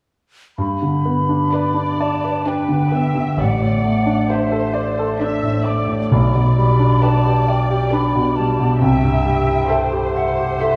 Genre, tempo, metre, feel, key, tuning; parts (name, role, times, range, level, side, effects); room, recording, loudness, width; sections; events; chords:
classical, romantic movement for piano and orchestra; 66 BPM; 3/4; rubato; G major; A4 = 442 Hz
clear concert grand piano; melody; 0.6-10.8 s; A1 to E5; -19 LUFS; equal
hollow concert flute; second line; 0.6-10.8 s; D5 to D6; -25 LUFS; equal
rich studio cello section; bass; 0.6-9.5 s; G2 to C3; -28 LUFS; equal
warm symphonic violin section; second line; 1.5-10.8 s; D4 to E5; -30 LUFS; equal
warm symphonic viola section; accompaniment; 1.5-10.8 s; B4 to E5; -30 LUFS; equal
wet recital hall reverb, RT60 1.8 s; recorded in a church or concert hall; -18 LUFS; mono
0.6-10.8 A section
0.6 G; 3.4 D7/A; 6.1 G/B; 8.8 C6